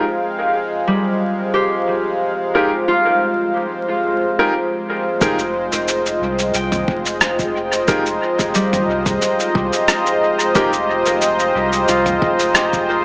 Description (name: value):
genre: ambient dub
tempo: 90 BPM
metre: 4/4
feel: swing 53% on 16ths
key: F minor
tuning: A4 = 440 Hz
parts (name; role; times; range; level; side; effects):
- warm analog pad; sustained chords; 0.0-13.0 s; F4 to Bb5; -18 LUFS; equal; chorus
- bright upright piano; stabs; 0.0-10.7 s; Eb4 to Bb4; -22 LUFS; equal; low-pass filter, dub echo
- bubbling stepped-filter texture; texture; 0.0-13.0 s; Ab3; -26 LUFS; equal; chorus, built-in reverb
- concert harp; arpeggios; 0.9-13.0 s; G3 to G5; -21 LUFS; equal; tape echo
- warm sub bass; bass; 5.2-13.0 s; F1 to C2; -28 LUFS; equal; none
- electronic kick drum; drums; 5.2-12.9 s; none; -24 LUFS; equal; overdrive, studio reverb
- lo-fi sampler-style drum kit; drums; 5.2-12.9 s; cabasa, rim click, toms; -21 LUFS; equal; studio reverb, dub echo
room: wet spring reverb, RT60 2.3 s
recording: vinyl crackle, small speaker sound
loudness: -15 LUFS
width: side -33 dB against mid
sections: 0.0-5.2 A section; 5.2-13.0 B section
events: filter sweep on upright piano 0.0-5.2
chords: 0.0 Fmadd9; 5.2 Fm11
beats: 0.55 1.22 1.88 | 2.55 3.22 3.88 4.55 | 5.22 5.88 6.55 7.22 | 7.88 8.55 9.22 9.88 | 10.55 11.22 11.88 12.55